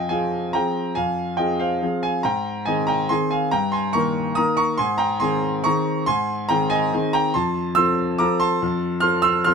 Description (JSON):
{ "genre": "classical, piano waltz", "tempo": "141 BPM", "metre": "3/4", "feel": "uneven beats, rubato", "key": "unclear", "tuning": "A4 = 443 Hz", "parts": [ { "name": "clear grand piano", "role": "solo", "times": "0.0-9.5 s", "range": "F2 to F6", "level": "-19 LUFS", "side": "equal", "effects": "none" } ], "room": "light reverb", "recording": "close, detailed microphones", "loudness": "-19 LUFS", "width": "side -6 dB against mid", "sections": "0.0-9.5 A section", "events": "none", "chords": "0.0 Fm; 2.3 Ab; 3.5 Eb7/G; 4.8 Ab; 7.3 F" }